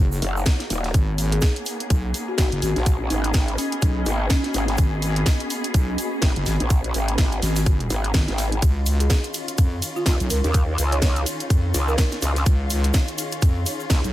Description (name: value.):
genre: bass house.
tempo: 125 BPM.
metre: 4/4.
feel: swing 58% on 16ths.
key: unclear.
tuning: A4 = 441 Hz.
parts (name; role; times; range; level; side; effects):
dark studio string section; sustained chords; 0.0-14.1 s; Eb3 to Ab4; -33 LUFS; left 3 dB; sidechain pumping, low-pass filter.
wobble bass; bass; 0.0-14.1 s; Gb1 to F2; -23 LUFS; equal; chorus, sidechain pumping.
granular cloud pad; texture; 0.0-14.1 s; Db4 to Cb6; -33 LUFS; equal; built-in reverb, sidechain pumping.
shaker and snare drum; drums; 0.1-14.0 s; none; -37 LUFS; right 2 dB; none.
growl bass; bass; 0.2-14.0 s; Eb1 to Eb2; -23 LUFS; equal; chorus, overdrive, sidechain pumping.
garage drum kit; drums; 0.2-14.1 s; hi-hat, ride cymbal, snare drum; -28 LUFS; equal; none.
electronic kick drum; drums; 0.5-14.0 s; none; -19 LUFS; equal; none.
folk marimba with soft mallets; melody; 1.3-4.5, 9.0-12.5 s; Db4 to Db5; -30 LUFS; equal; tape echo.
cabasa; percussion; 8.6-14.1 s; none; -34 LUFS; left 3 dB; none.
room: small room ambience.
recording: none.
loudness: -19 LUFS.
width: side -14 dB against mid.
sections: 0.0-14.1 A section.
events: none.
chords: 0.0 Ebm; 0.9 Abmadd9; 8.6 Dbadd9.